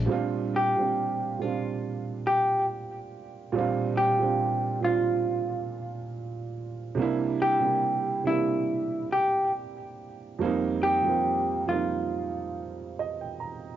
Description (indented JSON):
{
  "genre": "hip hop",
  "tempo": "70 BPM",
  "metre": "4/4",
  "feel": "swing 55% on 16ths",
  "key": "Bb major",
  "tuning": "A4 = 440 Hz",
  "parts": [
    { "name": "vintage hollow-body jazz guitar", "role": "melody", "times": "0.0-13.8 s", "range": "E4 to G4", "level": "-26 LUFS", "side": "equal", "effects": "low-pass filter, cassette tape" },
    { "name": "dark upright piano", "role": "accompaniment", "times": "0.0-13.8 s", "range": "F2 to Bb5", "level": "-29 LUFS", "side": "right 5 dB", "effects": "cassette tape, low-pass filter" }
  ],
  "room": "moderate studio reverb, RT60 0.6 s",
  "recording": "home recording on cassette, nothing above 7.5 kHz",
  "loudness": "-24 LUFS",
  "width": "side -11 dB against mid",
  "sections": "0.1-13.8 A section",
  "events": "upright piano fill 12.5-13.8",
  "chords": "0.1 Bb69; 7.0 C9; 10.4 F9sus4",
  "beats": "| 0.11 0.97 1.83 2.69 | 3.54 4.40 5.26 6.11 | 6.97 7.83 8.69 9.54 | 10.40 11.26 12.11 12.97"
}